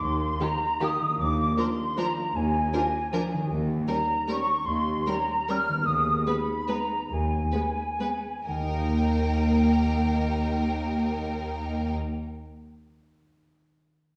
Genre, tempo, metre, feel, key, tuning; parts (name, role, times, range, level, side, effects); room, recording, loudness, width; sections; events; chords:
classical, orchestral ballroom waltz; 122-167 BPM; 3/4; rubato; Eb major; A4 = 437 Hz
small flute group; second line; 0.0-12.0 s; G5 to F6; -31 LUFS; equal
concert harp; arpeggios; 0.0-12.4 s; Eb3 to Eb5; -37 LUFS; equal
rich symphonic cello section; bass; 0.0-11.9 s; Eb2; -32 LUFS; equal
rich symphonic violin section; melody; 0.4-11.9 s; G4 to Cb5; -40 LUFS; equal
rich symphonic violin section; second line; 0.4-11.9 s; Bb3 to Eb4; -42 LUFS; equal
rich symphonic viola section; accompaniment; 0.4-12.0 s; Eb3 to Bb3; -32 LUFS; equal
wet recital hall reverb, RT60 1.3 s; dark, warm production; -27 LUFS; mono
0.0-8.5 A section; 8.5-11.3 B section
slowing down 5.3-8.5
0.0 Eb; 1.2 Bb7/Eb; 3.5 Eb7; 5.9 Abm/Eb; 8.5 Eb